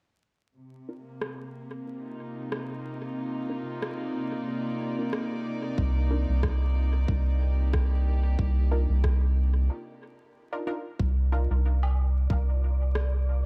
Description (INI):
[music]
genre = ambient dub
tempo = 92 BPM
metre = 4/4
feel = swing 56% on 16ths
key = C minor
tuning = A4 = 440 Hz
[part]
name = warm chamber string section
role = sustained chords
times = 0.6-13.5 s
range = C3 to D5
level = -36 LUFS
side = equal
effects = vintage 12-bit sampler grit
[part]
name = filtered dub chord stab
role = stabs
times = 0.9-11.5 s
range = D4 to Bb4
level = -40 LUFS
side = equal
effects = chorus, dub echo
[part]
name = electronic rim click and woodblock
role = drums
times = 1.2-13.1 s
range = none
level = -39 LUFS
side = equal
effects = low-pass filter on snare, low-pass filter on perc, low-pass filter on room, dub echo
[part]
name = round analog bass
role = bass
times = 5.8-13.5 s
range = C2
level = -26 LUFS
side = equal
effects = none
[part]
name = electronic kick drum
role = drums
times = 5.8-12.4 s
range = none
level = -31 LUFS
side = equal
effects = none
[part]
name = wind-like tuned noise texture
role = texture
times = 11.8-13.5 s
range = D5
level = -46 LUFS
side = equal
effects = built-in reverb
[sound]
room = digital ambience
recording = dark, warm production, vinyl crackle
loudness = -28 LUFS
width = mono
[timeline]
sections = 0.6-11.0 A section; 11.0-13.5 B section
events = filter sweep on synth stab 0.6-11.0; break 9.7-11.0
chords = 0.6 Cm11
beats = | 0.56 1.21 1.87 2.52 | 3.17 3.82 4.47 5.13 | 5.78 6.43 7.08 7.74 | 8.39 9.04 9.69 10.35 | 11.00 11.65 12.30 12.95